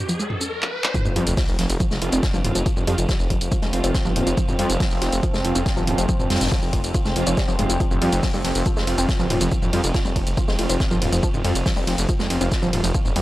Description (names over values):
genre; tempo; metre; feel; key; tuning
driving peak-time techno; 140 BPM; 4/4; straight; unclear; A4 = 441 Hz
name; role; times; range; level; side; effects
riser and sub drop; sound effects; 0.0-2.7 s; none; -29 LUFS; left 1 dB; none
warbly dusty pluck; riff; 0.1-13.2 s; F3 to Db4; -28 LUFS; equal; chorus, sidechain pumping, tape echo
punchy analog drum machine; drums; 0.1-13.2 s; handclaps, hi-hat, ride cymbal, shaker, toms; -27 LUFS; equal; sidechain pumping on toms, sidechain pumping on perc, sidechain pumping on hats, sidechain pumping on cymbals
soft-mallet drum kit; drums; 0.1-13.2 s; hi-hat, ride cymbal, snare drum; -32 LUFS; equal; sidechain pumping on cymbals, high-pass filter on cymbals, low-pass filter on cymbals, sidechain pumping on hats, high-pass filter on hats, low-pass filter on hats, high-pass filter on snare, low-pass filter on snare, high-pass filter on room, low-pass filter on room
deep dark ambient pad; drone; 3.0-13.2 s; F3 to C4; -30 LUFS; equal; chorus, built-in reverb, sidechain pumping
electronic kick drum; drums; 0.9-13.0 s; none; -23 LUFS; equal; none
detuned saw bass; bass; 1.1-13.2 s; Eb1 to F2; -23 LUFS; equal; sidechain pumping
rave stab; stabs; 1.2-13.2 s; F3 to F4; -30 LUFS; right 1 dB; chorus, built-in reverb, vintage 12-bit sampler grit, sidechain pumping, analog delay
room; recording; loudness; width
little or no reverb; none; -19 LUFS; side -16 dB against mid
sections
0.9-13.2 A section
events
riser 0.0-0.9; drum fill 0.6-0.9; drop 0.9-13.2; impact 0.9-2.7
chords
0.0 F5